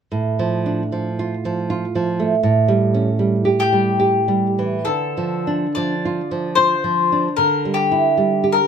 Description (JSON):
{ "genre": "romantic duo for mandolin and classical guitar", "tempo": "64-81 BPM", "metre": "3/4", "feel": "rubato", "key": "D minor", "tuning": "A4 = 440 Hz", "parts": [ { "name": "nylon-string guitar", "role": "accompaniment", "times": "0.1-8.7 s", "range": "A2 to G4", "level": "-18 LUFS", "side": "right 3 dB", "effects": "none" }, { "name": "mandolin", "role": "melody", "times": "3.6-8.7 s", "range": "G4 to D5", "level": "-19 LUFS", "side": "left 7 dB", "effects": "none" } ], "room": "light reverb", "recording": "none", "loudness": "-16 LUFS", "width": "side -7 dB against mid", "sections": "0.1-4.9 A section; 4.9-8.7 B section", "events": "none", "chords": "0.1 Dm/A; 2.4 A7; 4.9 Dm; 7.4 Em7b5/D", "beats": "| 0.11 0.92 1.69 | 2.43 3.19 4.00 | 4.87 5.77 6.57 | 7.38 8.17" }